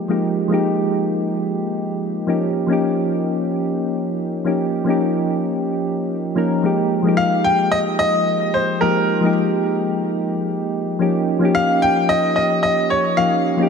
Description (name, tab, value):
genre	sunset chillout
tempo	110 BPM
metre	4/4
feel	straight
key	F minor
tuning	A4 = 441 Hz
part	soft electric-piano-like synth keys	accompaniment	0.0-13.7 s	F3 to Bb4	-18 LUFS	equal	chorus, auto-pan, low-pass filter, ping-pong delay
part	bright baby grand piano	melody	7.2-13.7 s	Bb4 to G5	-18 LUFS	left 1 dB	ping-pong delay
room	moderate lush hall reverb, RT60 2.5 s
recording	none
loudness	-17 LUFS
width	side -6 dB against mid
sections	0.0-13.7 A section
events	filter sweep on synth keys 0.0-13.7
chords	0.0 Fm11; 2.3 Eb9; 6.6 Fm11; 11.0 Eb9